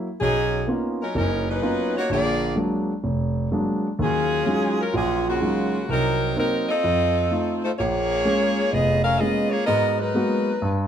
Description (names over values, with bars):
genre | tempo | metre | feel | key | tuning
jazz | 127 BPM | 4/4 | swing 68% on 8ths | unclear | A4 = 440 Hz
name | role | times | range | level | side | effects
warm concert grand piano | accompaniment | 0.0-10.9 s | F1 to Gb4 | -23 LUFS | right 1 dB | none
clear saxophone section | melody | 0.2-10.9 s | Db3 to F5 | -22 LUFS | left 1 dB | none
room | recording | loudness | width
moderate large studio reverb, RT60 0.9 s | dark, warm production | -20 LUFS | side -9 dB against mid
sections
0.0-7.8 A section; 7.8-10.9 B section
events
none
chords
0.2 Bmaj9#11; 2.1 Bb7b13; 4.0 Ebm11; 5.9 Cm7b5; 6.8 F7; 7.8 Bbm7; 9.7 Abm9